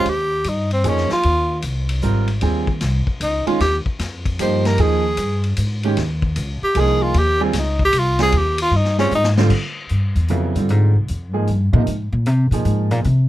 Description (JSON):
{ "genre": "modal jazz", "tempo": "152 BPM", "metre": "3/4", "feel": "swing 66% on 8ths", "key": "Eb mixolydian, Bb mixolydian from 9.5 s", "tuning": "A4 = 440 Hz", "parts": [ { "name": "breathy tenor saxophone", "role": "melody", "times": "0.0-9.3 s", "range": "C4 to C5", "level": "-19 LUFS", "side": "equal", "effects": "none" }, { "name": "clear concert grand piano", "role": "accompaniment", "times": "0.0-13.0 s", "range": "C3 to Bb4", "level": "-22 LUFS", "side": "right 5 dB", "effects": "none" }, { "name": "upright bass", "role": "bass", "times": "0.0-13.3 s", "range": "Ab1 to C3", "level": "-18 LUFS", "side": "equal", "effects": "none" }, { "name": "vintage drum kit", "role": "drums", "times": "0.1-13.2 s", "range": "crash cymbal, hi-hat, kick drum, ride cymbal, snare drum", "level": "-27 LUFS", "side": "left 2 dB", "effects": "none" } ], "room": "little or no reverb", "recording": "close, detailed microphones", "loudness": "-16 LUFS", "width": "side -14 dB against mid", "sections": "0.1-9.5 A section; 9.5-13.3 A section", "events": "tenor saxophone solo 0.0-9.5; drum fill 9.1-9.5; upright bass solo 9.5-13.3", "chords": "0.1 Ebsus24; 2.4 Eb13sus4; 7.1 Cm; 9.5 Bb7sus2" }